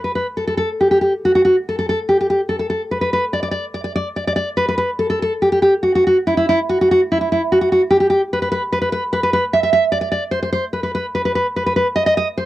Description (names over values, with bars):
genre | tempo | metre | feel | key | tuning
romantic piece for solo classical guitar | 73 BPM | 3/4 | rubato | B minor | A4 = 440 Hz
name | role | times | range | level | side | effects
nylon-string guitar | solo | 0.0-12.5 s | E4 to E5 | -15 LUFS | equal | none
room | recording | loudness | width
light reverb | dry, close 1970s-style studio recording | -15 LUFS | side -15 dB against mid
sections
0.0-12.5 A section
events
none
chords
none